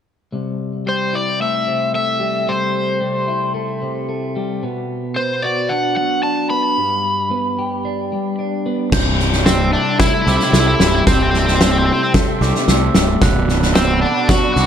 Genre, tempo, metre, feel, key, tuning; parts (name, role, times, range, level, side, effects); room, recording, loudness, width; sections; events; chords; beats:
post-rock; 112 BPM; 4/4; straight; C lydian; A4 = 440 Hz
twelve-string electric guitar; arpeggios; 0.3-14.7 s; C2 to G4; -21 LUFS; left 1 dB; spring reverb, analog delay
cranked stack guitar; melody; 0.9-14.7 s; C4 to B5; -19 LUFS; equal; overdrive, analog delay
warm studio string section; sustained chords; 8.9-14.7 s; A4 to C6; -27 LUFS; left 1 dB
glockenspiel with brass mallets; arpeggios; 8.9-14.7 s; D6 to G6; -26 LUFS; right 8 dB; analog delay
fuzz fingered electric bass; bass; 8.9-14.7 s; C1 to C2; -18 LUFS; right 1 dB; overdrive
loose indie drum kit; drums; 8.9-14.6 s; crash cymbal, kick drum, snare drum; -16 LUFS; equal
moderate lush hall reverb, RT60 1.5 s, small room reverb; dark, warm production; -15 LUFS; side -8 dB against mid
0.3-8.9 A section; 8.9-14.7 B section
0.3 C6; 4.6 Bm; 6.8 G; 8.9 C6; 13.2 Bm7/C
| 0.33 0.86 1.40 1.94 | 2.48 3.02 3.55 4.09 | 4.63 5.17 5.71 6.24 | 6.78 7.32 7.86 8.39 | 8.93 9.47 10.00 10.54 | 11.08 11.61 12.15 12.69 | 13.22 13.76 14.29